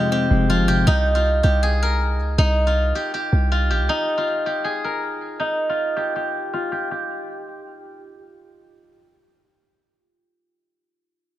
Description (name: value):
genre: hip hop, trap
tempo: 159 BPM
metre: 4/4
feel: half-time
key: C minor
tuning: A4 = 439 Hz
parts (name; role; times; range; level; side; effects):
- steel-string zither; melody; 0.0-9.3 s; Eb4 to Bb4; -22 LUFS; equal; low-pass filter
- mellow electric guitar; accompaniment; 0.0-0.9 s; F2 to C4; -20 LUFS; left 2 dB; none
- warm 808-style bass; bass; 0.3-3.9 s; F1 to Db2; -19 LUFS; equal; none
room: light reverb, studio reverb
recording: none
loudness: -18 LUFS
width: side -13 dB against mid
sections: 0.9-6.9 A section; 6.9-9.9 B section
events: filter sweep on guzheng 0.9-6.9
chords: 0.0 Fm; 0.9 C5; 3.9 N.C.